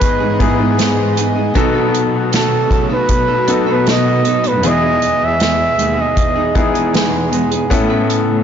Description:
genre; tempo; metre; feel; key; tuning
pop ballad; 78 BPM; 4/4; straight; E major; A4 = 440 Hz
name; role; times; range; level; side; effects
warm flugelhorn; melody; 0.0-6.8 s; A4 to E5; -17 LUFS; right 2 dB; ping-pong delay
clear baby grand piano; accompaniment; 0.0-8.4 s; G#2 to A4; -18 LUFS; left 4 dB; none
airy breathy pad; sustained chords; 0.0-8.4 s; B2 to D#5; -23 LUFS; left 2 dB; chorus
nylon-string guitar; arpeggios; 0.0-8.4 s; G#2 to B4; -21 LUFS; right 6 dB; none
dark symphonic cello section; bass; 0.0-8.4 s; D#2 to C#3; -20 LUFS; equal; none
unplugged drum kit; drums; 0.0-8.3 s; hi-hat, kick drum, snare drum; -19 LUFS; equal; none
room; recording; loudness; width
light reverb; blown-out, overdriven recording, overdrive, nothing above 7.5 kHz; -12 LUFS; side -8 dB against mid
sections
0.0-8.4 A section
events
none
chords
0.0 Emaj7; 1.6 B7; 4.6 Emaj7; 7.7 Aadd9

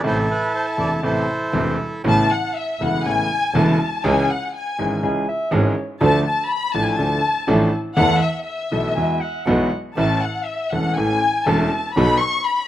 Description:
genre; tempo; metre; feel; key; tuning
tango; 121 BPM; 4/4; rubato; A major; A4 = 435 Hz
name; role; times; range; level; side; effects
bandoneon; melody; 0.0-2.0 s; E4 to D5; -22 LUFS; right 2 dB; slapback echo
dark studio violin section; second line; 0.0-12.7 s; E5 to C#6; -22 LUFS; left 3 dB; slapback echo
clear concert grand piano; accompaniment; 0.0-12.2 s; E1 to A4; -21 LUFS; equal; slapback echo
clear double bass; bass; 0.0-12.2 s; E1 to E2; -23 LUFS; right 2 dB; none
mellow clarinet; second line; 5.0-5.9, 9.0-9.8 s; C#5 to G#5; -26 LUFS; right 1 dB; slapback echo
room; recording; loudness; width
little or no reverb; recorded outdoors, with no room sound; -17 LUFS; side -12 dB against mid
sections
0.0-2.0 A section; 2.0-12.7 B section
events
violin section solo 2.0-12.7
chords
0.0 Am; 2.0 Aadd9; 4.0 C#m; 6.0 Dm; 8.0 Esus4; 9.0 Eadd9; 10.0 A; 12.0 B7

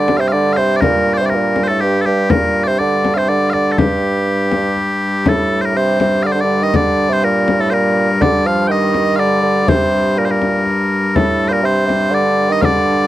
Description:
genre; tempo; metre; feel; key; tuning
medieval dance; 122 BPM; 3/4; straight; G minor; A4 = 440 Hz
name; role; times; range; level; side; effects
loud bright bagpipes; melody; 0.0-13.1 s; G4 to G5; -18 LUFS; left 1 dB; none
warm bassoon; second line; 0.0-13.1 s; G2 to F3; -17 LUFS; right 3 dB; none
warm hurdy-gurdy; drone; 0.0-13.1 s; G2; -19 LUFS; left 1 dB; none
frame drum; percussion; 0.1-12.9 s; none; -17 LUFS; left 3 dB; none
room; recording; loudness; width
small room ambience; dry, close 1970s-style studio recording; -12 LUFS; side -14 dB against mid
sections
0.0-5.3 A section; 5.3-13.1 B section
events
none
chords
none

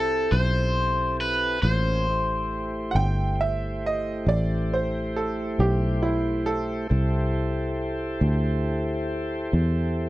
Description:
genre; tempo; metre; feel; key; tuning
blues; 46 BPM (dotted quarters); 12/8; straight; A minor; A4 = 440 Hz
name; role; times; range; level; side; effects
overdriven semi-hollow guitar; melody; 0.0-3.3 s; A4 to C5; -25 LUFS; left 1 dB; none
tonewheel organ; sustained chords; 0.0-10.1 s; A3 to C5; -30 LUFS; equal; slow rotary speaker
fingered electric bass; bass; 0.0-10.1 s; G1 to E2; -25 LUFS; equal; none
bright upright piano; second line; 2.9-8.2 s; E4 to G5; -28 LUFS; right 3 dB; none
room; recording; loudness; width
little or no reverb; dry, close 1970s-style studio recording; -22 LUFS; side -16 dB against mid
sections
0.0-10.1 A section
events
none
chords
0.0 Am7

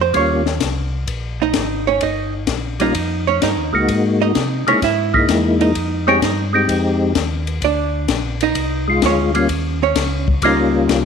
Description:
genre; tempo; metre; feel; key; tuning
soul jazz organ trio; 128 BPM; 4/4; swing 69% on 8ths; Eb mixolydian; A4 = 440 Hz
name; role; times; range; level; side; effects
archtop guitar, miked and amplified; accompaniment; 0.0-11.1 s; Db4 to E5; -20 LUFS; right 9 dB; none
mellow tonewheel organ; bass; 0.0-11.1 s; G1 to C3; -22 LUFS; left 1 dB; chorus vibrato, slow rotary speaker
percussive tonewheel organ; melody; 0.1-11.1 s; G3 to G4; -17 LUFS; left 3 dB; slow rotary speaker, chorus vibrato
compact cocktail drum kit; drums; 0.1-11.0 s; hi-hat, kick drum, ride cymbal, snare drum; -23 LUFS; left 7 dB; none
room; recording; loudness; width
moderate echo chamber reverb, RT60 1.4 s, small room ambience; 1960s-style stereo with parts hard left and right; -15 LUFS; side -6 dB against mid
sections
0.0-11.1 A section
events
hollow-body jazz guitar solo 0.0-11.1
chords
0.1 Eb9; 3.9 C7alt; 5.8 Fm7; 7.6 Bb9; 9.5 Eb9

